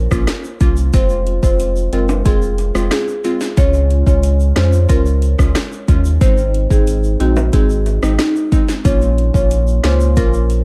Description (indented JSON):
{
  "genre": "dancehall",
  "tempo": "91 BPM",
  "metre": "4/4",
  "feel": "straight",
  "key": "Bb minor",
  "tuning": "A4 = 440 Hz",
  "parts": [
    { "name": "marimba with medium mallets", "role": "melody", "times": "0.0-10.6 s", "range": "Eb4 to Db5", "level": "-24 LUFS", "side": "equal", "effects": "analog delay" },
    { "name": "saturated sub bass", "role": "bass", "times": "0.0-10.6 s", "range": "F1 to F2", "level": "-17 LUFS", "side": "equal", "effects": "none" },
    { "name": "glassy wavetable pluck", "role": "accompaniment", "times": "0.1-10.3 s", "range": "Ab3 to F4", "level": "-24 LUFS", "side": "equal", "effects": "chorus, analog delay" },
    { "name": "afro-pop drum kit", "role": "drums", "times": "0.1-10.6 s", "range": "hi-hat, kick drum, rim click, snare drum", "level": "-18 LUFS", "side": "equal", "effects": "none" },
    { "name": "tube shaker and timbales", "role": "percussion", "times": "0.1-10.6 s", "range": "none", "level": "-32 LUFS", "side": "equal", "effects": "analog delay" }
  ],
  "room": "digital ambience",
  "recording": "echo-heavy mix, faint mains hum",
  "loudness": "-15 LUFS",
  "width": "mono",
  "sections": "0.0-10.6 A section",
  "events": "none",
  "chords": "0.0 Bbm; 0.9 Fm; 3.6 Db; 6.2 Ab; 8.8 Bbm",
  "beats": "0.28 | 0.94 1.60 2.26 2.92 | 3.58 4.23 4.89 5.55 | 6.21 6.87 7.53 8.19 | 8.85 9.51 10.17"
}